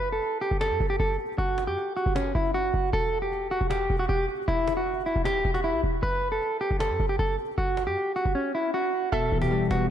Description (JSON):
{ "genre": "hip hop, trap", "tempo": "155 BPM", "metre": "4/4", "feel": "half-time", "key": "F# phrygian", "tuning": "A4 = 440 Hz", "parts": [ { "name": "clean electric guitar", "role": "melody", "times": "0.0-9.9 s", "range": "C#4 to B4", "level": "-26 LUFS", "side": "right 1 dB", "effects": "tape echo" }, { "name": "short 808-style bass", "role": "bass", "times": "0.0-9.9 s", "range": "D1 to F#2", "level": "-29 LUFS", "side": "equal", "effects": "none" }, { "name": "cajon", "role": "drums", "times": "0.2-9.8 s", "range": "none", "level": "-40 LUFS", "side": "equal", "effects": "vintage 12-bit sampler grit" }, { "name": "warbly dusty pluck", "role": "second line", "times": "9.1-9.5 s", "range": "E5", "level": "-34 LUFS", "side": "right 3 dB", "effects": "chorus, phaser, tape echo" }, { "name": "bell-like tine electric piano", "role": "accompaniment", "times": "9.1-9.9 s", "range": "B2 to B3", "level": "-26 LUFS", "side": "left 2 dB", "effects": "ensemble chorus" } ], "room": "wet plate reverb, RT60 2.2 s", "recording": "dreamy mix soaked in reverb", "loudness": "-24 LUFS", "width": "side -10 dB against mid", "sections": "0.0-9.1 A section", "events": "none", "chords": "0.0 F#m; 2.9 E5; 6.0 F#m; 9.1 Em" }